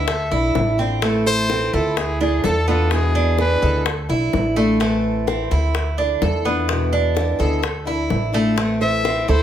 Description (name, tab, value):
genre	latin, Cuban son and guajira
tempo	127 BPM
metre	4/4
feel	straight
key	A harmonic minor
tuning	A4 = 440 Hz
part	clear trumpet	melody	0.0-3.8, 8.8-9.4 s	G#4 to E5	-22 LUFS	left 1 dB	none
part	picked old ladder-braced acoustic guitar	accompaniment	0.0-9.4 s	B2 to E4	-26 LUFS	left 3 dB	none
part	Cuban tres	arpeggios	0.0-9.4 s	A3 to A4	-22 LUFS	right 2 dB	none
part	upright bass	bass	0.0-9.4 s	A1 to E2	-22 LUFS	equal	none
part	bongos	percussion	0.1-9.4 s	none	-26 LUFS	left 5 dB	none
part	nylon-string guitar	second line	1.3-3.8, 8.8-9.4 s	E4 to C5	-25 LUFS	right 6 dB	none
room	moderate studio reverb, RT60 0.6 s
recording	none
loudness	-17 LUFS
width	side -10 dB against mid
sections	0.0-1.0 A section; 1.0-9.4 B section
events	trumpet solo 0.0-1.0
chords	0.1 Dmadd9; 1.0 Am; 2.0 Dmadd9; 2.9 E7; 3.9 Dmadd9; 4.8 Am; 5.7 Dmadd9; 6.7 E7; 7.6 Dmadd9; 8.6 Am